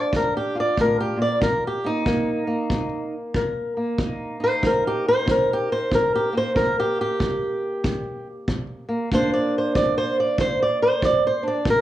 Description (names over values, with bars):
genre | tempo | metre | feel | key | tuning
acoustic country blues, solo or duo | 94 BPM | 4/4 | swing 64% on 8ths | unclear | A4 = 440 Hz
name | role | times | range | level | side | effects
fingerpicked swing-style acoustic guitar | melody | 0.0-11.8 s | G2 to D5 | -20 LUFS | equal | plate reverb
kick drum | drums | 0.1-11.8 s | none | -27 LUFS | equal | none
room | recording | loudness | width
moderate small room ambience, RT60 0.5 s | worn, warbling old tape, cassette tape, warbly pitch drift, small room ambience | -20 LUFS | side -13 dB against mid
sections
0.0-11.8 A section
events
steel-string acoustic guitar solo 0.0-11.8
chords
0.0 Gm7; 1.4 Cm7; 9.1 Gm7